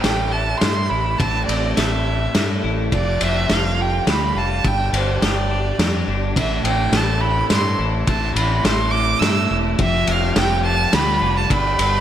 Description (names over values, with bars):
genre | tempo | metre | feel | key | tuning
post-rock | 105 BPM | 3/4 | straight | A minor | A4 = 440 Hz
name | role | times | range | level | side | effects
warm violin | melody | 0.0-12.0 s | C5 to E6 | -22 LUFS | right 4 dB | slapback echo, analog delay
pedal harmonium | sustained chords | 0.0-12.0 s | B2 to A4 | -31 LUFS | left 1 dB | none
twelve-string electric guitar | arpeggios | 0.0-12.0 s | G2 to A4 | -25 LUFS | left 2 dB | lush chorus, analog delay
fingered electric bass | bass | 0.0-12.0 s | E1 to G2 | -22 LUFS | equal | none
loose indie drum kit | drums | 0.0-11.9 s | kick drum, ride cymbal, snare drum | -22 LUFS | equal | none
room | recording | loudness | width
light reverb, small room ambience | none | -16 LUFS | side -10 dB against mid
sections
0.0-12.0 A section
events
none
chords
0.0 Am; 2.9 Fadd9; 4.6 G; 6.4 Am; 9.8 Fadd9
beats
0.04 0.62 | 1.20 1.77 2.35 | 2.92 3.49 4.07 | 4.64 5.21 5.79 | 6.36 6.93 7.50 | 8.08 8.65 9.22 | 9.79 10.36 10.94 | 11.51